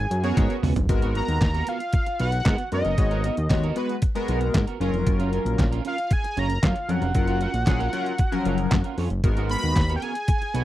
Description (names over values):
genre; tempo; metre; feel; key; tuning
early-eighties boogie funk; 115 BPM; 4/4; straight; G# dorian; A4 = 440 Hz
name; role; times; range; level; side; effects
fat analog lead; melody; 0.0-10.6 s; D#5 to B5; -28 LUFS; equal; chorus, slapback echo
fat analog bass; bass; 0.0-10.6 s; E#1 to G#2; -25 LUFS; equal; none
electric guitar at the edge of break-up; riff; 0.1-10.6 s; B3 to C#5; -32 LUFS; right 9 dB; analog chorus
detuned 8-bit digital drum machine; drums; 0.1-10.6 s; handclaps, hi-hat, kick drum, snare drum, toms; -23 LUFS; equal; none
chorused polysynth; accompaniment; 0.2-9.7 s; E#3 to C#5; -27 LUFS; left 2 dB; none
room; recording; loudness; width
little or no reverb; dry, close 1970s-style studio recording; -21 LUFS; side -14 dB against mid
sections
0.9-10.6 A section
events
drum fill 0.4-0.9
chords
0.0 G#m11; 0.9 G#m9; 4.8 F#maj7; 9.2 G#m9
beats
0.37 | 0.89 1.41 1.94 2.46 | 2.98 3.50 4.02 4.54 | 5.07 5.59 6.11 6.63 | 7.15 7.67 8.20 8.72 | 9.24 9.76 10.28